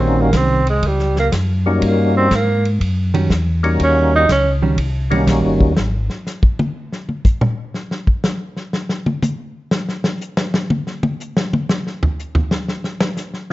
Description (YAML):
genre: soul jazz organ trio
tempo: 122 BPM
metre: 4/4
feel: swing 68% on 8ths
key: Eb mixolydian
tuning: A4 = 440 Hz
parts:
  - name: breathy tenor saxophone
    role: melody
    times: 0.0-4.5 s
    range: G3 to Eb4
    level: -17 LUFS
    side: right 2 dB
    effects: none
  - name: percussive tonewheel organ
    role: melody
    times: 0.0-5.7, 13.5 s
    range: G3 to F#4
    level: -18 LUFS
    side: left 2 dB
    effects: slow rotary speaker, chorus vibrato
  - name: hollow-body jazz guitar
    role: accompaniment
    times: 0.0-5.7 s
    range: Eb3 to F#4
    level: -19 LUFS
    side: right 3 dB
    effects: none
  - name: mellow tonewheel organ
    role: bass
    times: 0.0-6.1 s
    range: G1 to Ab2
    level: -18 LUFS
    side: equal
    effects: chorus vibrato, slow rotary speaker
  - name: warm soul drum kit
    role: drums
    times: 0.3-13.5 s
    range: hi-hat, kick drum, ride cymbal, snare drum, toms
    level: -19 LUFS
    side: equal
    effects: none
room: moderate large studio reverb, RT60 1.1 s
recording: dark, warm production, nothing above 7.7 kHz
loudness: -15 LUFS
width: side -17 dB against mid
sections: 0.0-13.5 A section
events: tenor saxophone solo 0.0-13.5; drum solo 5.8-13.5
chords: 0.0 Eb7#9; 5.8 N.C.